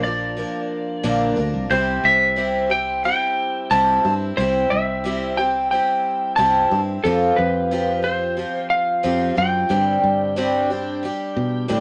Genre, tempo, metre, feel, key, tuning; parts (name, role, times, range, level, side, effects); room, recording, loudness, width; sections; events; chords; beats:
folk rock and heartland rock; 90 BPM; 4/4; straight; A4 = 441 Hz
electric slide guitar; melody; 0.0-11.7 s; A4 to A5; -22 LUFS; equal
picked twelve-string acoustic guitar; accompaniment; 0.0-11.8 s; G2 to Bb4; -25 LUFS; equal
fingered electric bass; bass; 0.0-11.8 s; Bb1 to B2; -28 LUFS; equal
moderate studio reverb, RT60 0.7 s; -20 LUFS; mono
0.0-11.8 A section
0.0 Bb; 1.7 C; 7.0 Fsus2; 9.7 Gsus4
0.37 1.04 | 1.71 2.37 3.04 3.71 | 4.38 5.04 5.71 6.37 | 7.04 7.70 8.37 9.03 | 9.70 10.36 11.03 11.69